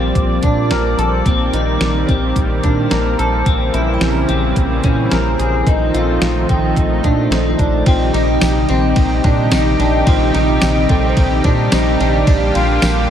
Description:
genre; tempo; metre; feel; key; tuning
dream pop; 109 BPM; 4/4; straight; unclear; A4 = 440 Hz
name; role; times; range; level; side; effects
lush unison pad; sustained chords; 0.0-13.1 s; C3 to D5; -18 LUFS; equal; chorus
electric guitar at the edge of break-up; arpeggios; 0.0-13.1 s; C4 to Bb4; -19 LUFS; left 1 dB; lush chorus, tape echo
round analog bass; bass; 0.0-13.1 s; Bb1 to Bb2; -18 LUFS; equal; none
glassy synth bell; texture; 0.0-0.2, 3.7-12.5 s; C4 to Bb5; -30 LUFS; right 2 dB; none
clean 12-bit digital drum machine; drums; 0.2-12.9 s; hi-hat, kick drum, ride cymbal, snare drum, tambourine; -18 LUFS; equal; none
room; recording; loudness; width
light reverb; none; -12 LUFS; side -9 dB against mid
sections
0.0-7.9 A section; 7.9-13.1 B section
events
none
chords
0.0 Bb69; 1.3 Cm9/Bb; 3.5 C7b9/Bb; 5.7 F7/Bb; 7.9 Cm/Bb; 12.3 Bb6

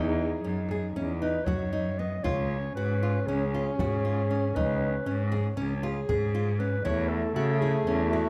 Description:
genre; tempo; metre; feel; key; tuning
contemporary instrumental, chamber music in an uneven meter; 234 BPM (eighths); 9/8; straight; unclear; A4 = 440 Hz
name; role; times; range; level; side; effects
mellow clarinet; melody; 0.0-8.3 s; F#4 to D#5; -36 LUFS; equal; none
warm French horn; second line; 0.0-8.3 s; A3 to D#4; -35 LUFS; equal; none
nylon-string guitar; arpeggios; 0.0-8.3 s; B3 to G#4; -36 LUFS; equal; none
clear cello; bass; 0.0-8.3 s; C#2 to C#3; -31 LUFS; equal; none
frame drum; percussion; 0.7-7.9 s; none; -37 LUFS; equal; none
room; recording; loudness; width
light reverb; dark, warm production; -28 LUFS; mono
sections
0.0-8.3 A section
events
none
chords
0.0 B69/E (rootless); 2.3 C#7; 6.9 F#m9/E (rootless)

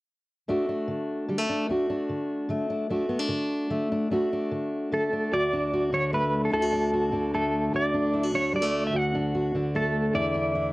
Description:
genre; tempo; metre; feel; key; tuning
indie folk with a building arrangement; 149 BPM; 3/4; straight; D major; A4 = 437 Hz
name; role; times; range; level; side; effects
fingerpicked steel-string acoustic guitar; accompaniment; 0.5-10.7 s; D2 to F#4; -25 LUFS; equal; none
clean electric guitar; melody; 4.9-10.7 s; A4 to F#5; -27 LUFS; right 1 dB; tremolo, cassette tape
room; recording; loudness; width
light reverb; home recording on cassette; -24 LUFS; side -20 dB against mid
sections
0.5-5.3 A section; 5.3-10.7 B section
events
none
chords
0.5 D; 10.1 E7sus4

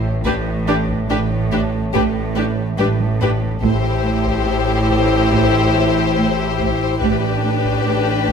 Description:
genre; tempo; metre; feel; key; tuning
cinematic, suspense film score; 71 BPM; 4/4; straight; A minor; A4 = 440 Hz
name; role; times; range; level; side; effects
warm chamber cello section; riff; 0.0-8.3 s; A2 to A3; -24 LUFS; right 4 dB; none
warm chamber double bass section; bass; 0.0-8.3 s; A1; -23 LUFS; right 4 dB; none
warm studio cello section; bass; 0.0-8.3 s; A2; -24 LUFS; right 3 dB; none
organ-like drone; drone; 0.0-8.3 s; A1; -25 LUFS; left 1 dB; ensemble chorus, built-in reverb
warm chamber violin section; melody; 0.2-8.3 s; B4 to C5; -24 LUFS; left 7 dB; none
warm chamber violin section; second line; 0.3-8.3 s; G4; -23 LUFS; left 4 dB; none
dark chamber viola section; accompaniment; 0.3-8.3 s; D4 to E4; -23 LUFS; equal; none
taiko ensemble; drums; 0.3-8.3 s; none; -29 LUFS; equal; none
room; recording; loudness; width
moderate scoring stage reverb, RT60 1.6 s; none; -15 LUFS; side -6 dB against mid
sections
0.0-8.3 A section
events
drum fill 2.8-3.6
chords
0.3 N.C.; 3.6 Am7; 7.0 G/A

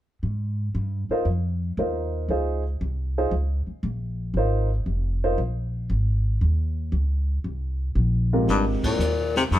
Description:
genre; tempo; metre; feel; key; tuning
jazz, small-group swing and bop; 116 BPM; 4/4; swing 69% on 8ths; Ab major; A4 = 440 Hz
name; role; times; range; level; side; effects
upright bass; bass; 0.2-9.6 s; F1 to Ab2; -24 LUFS; equal; none
warm upright piano; accompaniment; 1.1-9.0 s; Ab2 to C5; -25 LUFS; right 1 dB; none
warm baritone saxophone; melody; 8.5-9.6 s; G2 to C3; -23 LUFS; left 4 dB; none
jazz brush drum kit; drums; 8.5-9.6 s; brushed snare drum, hi-hat, kick drum, ride cymbal, snare drum; -29 LUFS; equal; none
room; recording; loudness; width
light reverb; band playing live in one room; -22 LUFS; side -13 dB against mid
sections
0.2-8.5 A section; 8.5-9.6 B section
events
band accent 8.7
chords
0.2 Ab69; 2.3 Dbmaj7; 4.4 Ab69; 6.4 Eb7(no3); 8.5 Abmaj13

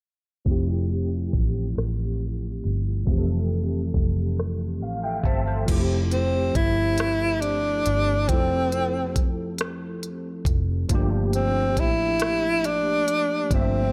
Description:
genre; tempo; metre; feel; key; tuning
slow six-eight R&B; 46 BPM (dotted quarters); 6/8; straight; F major; A4 = 443 Hz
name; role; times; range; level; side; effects
overdriven tine electric piano; accompaniment; 0.4-13.9 s; E3 to A5; -31 LUFS; equal; ensemble chorus
vintage muted fingered electric bass; bass; 0.5-13.9 s; F1 to A1; -28 LUFS; equal; none
smooth R&B drum kit; drums; 0.5-13.7 s; crash cymbal, hi-hat, kick drum, rim click; -28 LUFS; equal; none
breathy tenor saxophone; melody; 6.1-13.9 s; C4 to E4; -25 LUFS; equal; slapback echo
room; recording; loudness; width
little or no reverb; low-pass filter; -24 LUFS; mono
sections
0.5-5.7 A section; 5.7-13.9 B section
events
filter sweep 0.5-5.7; tine electric piano fill 4.4-5.7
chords
0.5 Fmaj9; 10.9 Gm9

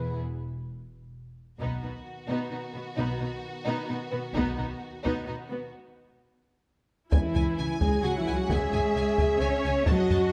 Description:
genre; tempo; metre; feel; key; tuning
cinematic, epic orchestral film score; 130 BPM; 3/4; straight; unclear; A4 = 440 Hz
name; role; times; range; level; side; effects
rich symphonic violin section; melody; 0.0-10.2 s; F#4 to A5; -44 LUFS; equal; none
warm symphonic violin section; second line; 0.0-10.3 s; B3 to G#5; -39 LUFS; equal; none
rich symphonic viola section; accompaniment; 0.0-10.3 s; B3 to C#5; -36 LUFS; equal; none
clear French horn section; sustained chords; 0.0-10.3 s; D#3 to C#5; -34 LUFS; equal; none
dark trumpet; stabs; 0.0-0.2, 7.1-10.3 s; B4 to A5; -41 LUFS; equal; none
warm symphonic cello section; bass; 0.0-10.3 s; E2 to C#4; -36 LUFS; equal; none
warm symphonic double bass section; bass; 0.0-4.6, 7.1-10.2 s; E1 to F#2; -35 LUFS; equal; none
taiko ensemble; drums; 1.6-10.3 s; none; -31 LUFS; equal; none
clear trombone section; sustained chords; 7.1-10.3 s; C#3 to C#4; -41 LUFS; equal; none
room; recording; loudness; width
moderate scoring stage reverb, RT60 1.6 s; none; -28 LUFS; mono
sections
0.0-1.6 A section; 1.6-7.1 B section; 7.1-10.3 C section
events
break 0.2-1.6, 5.7-7.1; drum fill 0.9-1.6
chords
0.0 E5; 1.6 B; 7.1 C#m

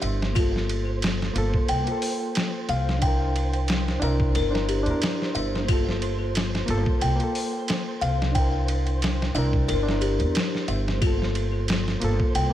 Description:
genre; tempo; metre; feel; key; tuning
trip hop; 90 BPM; 4/4; swing 54% on 16ths; G dorian; A4 = 441 Hz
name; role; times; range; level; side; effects
reed electric piano; accompaniment; 0.0-12.5 s; Bb3 to Bb4; -29 LUFS; equal; overdrive, harmonic tremolo, tape echo
music box; arpeggios; 0.0-12.5 s; F4 to G5; -30 LUFS; left 4 dB; digital delay
upright bass; bass; 0.0-12.5 s; G1 to E2; -26 LUFS; equal; none
boom bap sampler-style drum kit; drums; 0.0-12.5 s; hi-hat, kick drum, ride cymbal, snare drum; -27 LUFS; equal; none
flickering grainy texture; texture; 0.0-12.5 s; C5; -37 LUFS; right 1 dB; built-in reverb
room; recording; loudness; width
little or no reverb; none; -22 LUFS; side -12 dB against mid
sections
0.0-12.5 A section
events
none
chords
0.4 Gm7; 3.0 C7; 5.7 Gm7; 8.4 C7; 11.0 Gm7

